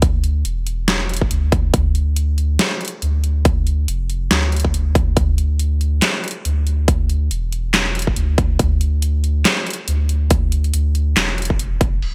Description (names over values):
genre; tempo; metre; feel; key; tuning
deep dubstep; 140 BPM; 4/4; swing 57% on 16ths, half-time; D minor; A4 = 440 Hz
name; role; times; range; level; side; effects
soft dub sub bass; bass; 0.0-12.1 s; D1 to D2; -20 LUFS; equal; none
dubstep drum kit; drums; 0.0-12.1 s; crash cymbal, handclaps, hi-hat, snare drum; -22 LUFS; equal; overdrive, low-pass filter on hats, low-pass filter on snare, low-pass filter on cymbals, low-pass filter on room, gated reverb
electronic kick drum; drums; 0.0-11.9 s; none; -20 LUFS; equal; overdrive
room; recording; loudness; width
little or no reverb; bright 1980s-style digital production; -18 LUFS; mono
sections
0.0-12.0 A section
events
none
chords
none